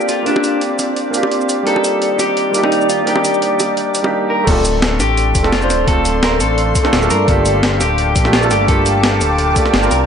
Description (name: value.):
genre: liquid drum and bass.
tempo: 171 BPM.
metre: 4/4.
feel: swing 54% on 16ths.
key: G minor.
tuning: A4 = 441 Hz.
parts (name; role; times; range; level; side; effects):
electric guitar at the edge of break-up; melody; 0.0-10.0 s; D4 to Bb4; -20 LUFS; left 3 dB; ping-pong delay.
warm baby grand piano; accompaniment; 0.0-10.1 s; G3 to C5; -17 LUFS; right 2 dB; analog delay.
shimmering ambient pad; sustained chords; 0.0-10.1 s; Eb3 to D6; -20 LUFS; equal; chorus, built-in reverb, sidechain pumping.
breakbeat sampler-style drum kit; drums; 0.0-10.0 s; crash cymbal, hi-hat, shaker, snare drum; -19 LUFS; equal; none.
bongos; percussion; 0.4-4.1 s; none; -24 LUFS; equal; none.
smooth gliding synth bass; bass; 4.5-10.1 s; D1 to G2; -18 LUFS; equal; none.
electronic kick drum; drums; 4.5-9.6 s; none; -16 LUFS; equal; none.
room: moderate plate reverb, RT60 1.1 s, digital ambience.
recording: dreamy mix soaked in reverb, nothing above 10.7 kHz.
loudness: -12 LUFS.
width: side -7 dB against mid.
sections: 0.0-4.5 A section; 4.5-10.1 B section.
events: drop 4.5-10.1.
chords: 0.0 C9sus4; 1.7 Ebmaj7; 4.5 Dm7; 7.1 Gm9.